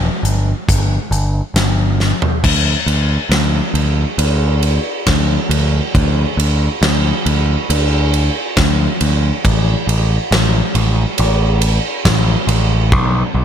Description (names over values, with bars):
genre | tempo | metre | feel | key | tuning
post-rock | 69 BPM | 4/4 | straight | unclear | A4 = 440 Hz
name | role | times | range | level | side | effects
growling picked electric bass | bass | 0.0-13.4 s | G1 to D2 | -14 LUFS | equal | overdrive
big rock drum kit | drums | 0.2-13.1 s | crash cymbal, hi-hat, kick drum, ride cymbal, snare drum, toms | -16 LUFS | equal | none
room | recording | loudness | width
little or no reverb | none | -13 LUFS | side -9 dB against mid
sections
0.0-2.4 A section; 2.4-13.4 B section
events
drum fill 2.0-2.4; build-up 2.4-13.4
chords
none